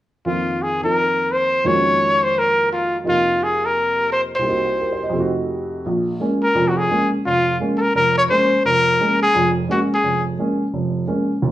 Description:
jazz; 172 BPM; 4/4; swing 63% on 8ths; Bb minor; A4 = 440 Hz
breathy trumpet; melody; 0.3-10.2 s; F4 to Db5; -17 LUFS; left 1 dB
dark upright piano; accompaniment; 0.3-11.5 s; F1 to Eb5; -21 LUFS; right 1 dB
wet large studio reverb, RT60 0.9 s; band playing live in one room; -16 LUFS; side -14 dB against mid
0.2-5.8 A section; 5.8-11.5 B section
0.2 F7sus4; 1.6 Ebm11/F; 3.0 F7sus4; 4.5 Cm7b5; 5.2 F7b9; 5.8 Bbm7

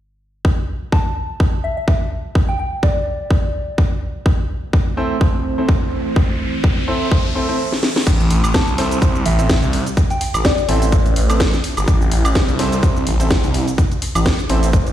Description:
bass house; 126 BPM; 4/4; swing 56% on 16ths; A minor; A4 = 441 Hz
electronic kick drum; drums; 0.4-14.8 s; -15 LUFS; equal
soft synth bell; melody; 0.9-3.5, 8.5-11.1 s; D5 to A5; -25 LUFS; left 1 dB; chorus, phaser, dub echo
deep dark ambient pad; sustained chords; 4.9-7.6 s; A3 to C5; -25 LUFS; right 2 dB; chorus, built-in reverb, sidechain pumping
riser; sound effects; 4.8-8.1 s; -29 LUFS; equal
clear grand piano; stabs; 5.0-14.7 s; C4 to C5; -24 LUFS; right 1 dB; sidechain pumping, dub echo
garage drum kit; drums; 7.7-14.9 s; cabasa, crash cymbal, hi-hat, snare drum, woodblock; -21 LUFS; equal; low-pass filter on snare, low-pass filter on hats, low-pass filter on cymbals, low-pass filter on perc
phased detuned saw bass; bass; 8.1-14.9 s; G1 to C2; -17 LUFS; equal; phaser, tube saturation, sidechain pumping
light reverb, digital ambience; played on a big sound system in a bare room, stone room reverb, faint mains hum; -15 LUFS; side -12 dB against mid
0.4-8.1 A section; 8.1-14.9 B section
riser 4.8-8.1; drum fill 7.7-8.1
0.4 Am

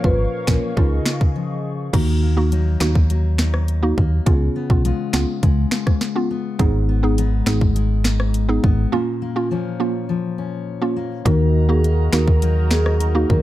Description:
dancehall; 103 BPM; 4/4; straight; Eb minor; A4 = 442 Hz
marimba with medium mallets; melody; 0.0-0.6, 11.3-13.4 s; Ab4 to Cb5; -25 LUFS; equal
mallet-like synth pluck; accompaniment; 0.0-13.3 s; Bb3 to Ab4; -24 LUFS; right 2 dB; chorus, sidechain pumping
hollow soft pad; sustained chords; 0.0-1.9, 11.3-13.4 s; Gb4 to Db6; -31 LUFS; equal; chorus, sidechain pumping
fingerpicked steel-string acoustic guitar; arpeggios; 0.0-13.4 s; Ab2 to F4; -25 LUFS; left 6 dB
solid FM bass; bass; 0.0-13.4 s; Ab1 to Eb2; -18 LUFS; equal
island pop drum kit; drums; 0.0-13.4 s; crash cymbal, finger snaps, hi-hat, kick drum, rim click, snare drum; -19 LUFS; equal
little or no reverb; dark, warm production; -16 LUFS; side -14 dB against mid
0.0-1.9 A section; 1.9-11.3 B section; 11.3-13.4 C section
break 1.4-1.9, 8.9-11.3
0.0 Bbm; 0.8 Dbadd9; 1.9 Ebm; 4.3 Db7; 6.6 Abm; 8.9 Bbm; 11.3 Ebm

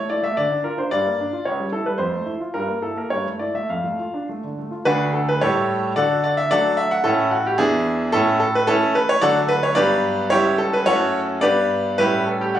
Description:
classical-period piano sonatina; 109 BPM; 2/4; rubato; D minor, D major from 4.8 s; A4 = 440 Hz
bright grand piano; solo; 0.0-12.6 s; C#2 to F#5; -18 LUFS; equal
light reverb; recorded on a phone in the room, club reverb, compression; -18 LUFS; side -11 dB against mid
0.0-4.8 A section; 4.8-12.6 A section
0.4 Dm; 0.9 Gm7; 1.4 C#dim; 2.0 Fmaj7; 2.5 Edim/G; 3.1 A7/G; 3.7 Dm/F; 4.8 D; 5.4 A7; 5.9 D; 7.0 A; 7.6 E7; 8.1 A; 9.2 D; 9.8 Gmaj7; 10.3 C#dim; 10.9 F#m7; 11.4 G; 12.0 A7

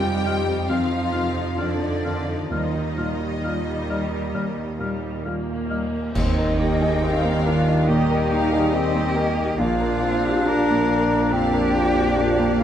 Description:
cinematic, emotional film score for orchestra; 64-72 BPM; 4/4; rubato; Eb major; A4 = 440 Hz
clear studio violin section; melody; 0.0-12.6 s; D5 to G5; -33 LUFS; left 4 dB
rich symphonic violin section; second line; 0.0-12.6 s; D4 to F5; -30 LUFS; left 2 dB
clear symphonic viola section; accompaniment; 0.0-12.6 s; Eb3 to F4; -29 LUFS; equal
warm concert grand piano; accompaniment; 0.0-12.6 s; Bb1 to F5; -26 LUFS; equal
clear symphonic cello section; bass; 0.0-12.6 s; Bb2 to G3; -28 LUFS; right 2 dB
rich symphonic double bass section; bass; 0.0-12.6 s; Bb1 to F2; -28 LUFS; right 2 dB
mellow clarinet; second line; 0.3-12.6 s; G3 to Eb4; -28 LUFS; left 1 dB
mellow hollow silver concert flute; second line; 0.3-12.6 s; Eb5 to F6; -30 LUFS; left 2 dB
cymbal swell, clash cymbals and concert bass drum; percussion; 2.5-7.8 s; -30 LUFS; equal
mellow French horn section; sustained chords; 6.1-12.6 s; Eb3 to D4; -28 LUFS; left 3 dB
rich cello; melody; 6.2-12.6 s; Eb4 to Bb4; -28 LUFS; right 3 dB
moderate scoring stage reverb, RT60 1.8 s; dark, warm production; -19 LUFS; side -10 dB against mid
0.0-6.1 A section; 6.1-12.6 B section
band accent 6.1-7.0
0.0 F7(no3); 2.5 Ebadd9; 6.1 Eb; 9.6 Bb

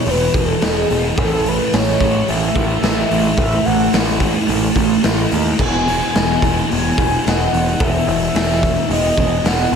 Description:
rock, shoegaze and dream pop; 109 BPM; 4/4; straight; E major; A4 = 440 Hz
mellow horn-like synth lead; melody; 0.0-9.8 s; G#4 to G#5; -20 LUFS; left 1 dB; chorus, digital delay
thick fuzz guitar; riff; 0.0-9.8 s; E2 to A3; -18 LUFS; equal; distortion, ensemble chorus
growling picked electric bass; bass; 0.1-9.8 s; E1 to D#2; -22 LUFS; equal; overdrive
raw garage drum kit; drums; 0.1-9.8 s; crash cymbal, hi-hat, kick drum, snare drum; -19 LUFS; equal
light reverb, small room ambience; -14 LUFS; side -7 dB against mid
0.0-9.8 A section
0.0 E5; 1.2 A5; 5.6 E

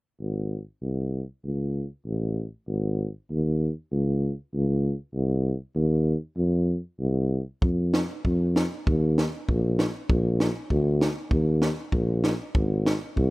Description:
alpine folk, alpine dance band; 97 BPM; 2/4; rubato; Ab major; A4 = 441 Hz
mellow tuba; bass; 0.2-13.3 s; Ab1 to F2; -24 LUFS; equal
compact cocktail drum kit; drums; 7.6-13.3 s; kick drum, snare drum; -26 LUFS; equal
little or no reverb; rough home demo mix; -24 LUFS; side -21 dB against mid
0.2-2.7 A section; 2.7-13.3 B section

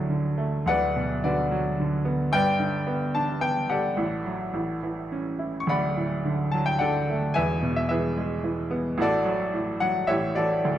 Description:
classical, lyrical solo piano; 108 BPM; 3/4; rubato; D major; A4 = 439 Hz
bright baby grand piano; solo; 0.0-10.8 s; D1 to C#6; -23 LUFS; equal
moderate recital hall reverb, RT60 1.7 s; dark, warm production; -23 LUFS; side -11 dB against mid
0.0-10.8 A section
0.0 D; 0.7 Bm/D; 2.3 G; 4.0 D/A; 4.5 A; 5.7 D; 7.4 E; 9.0 D/A; 10.1 A7

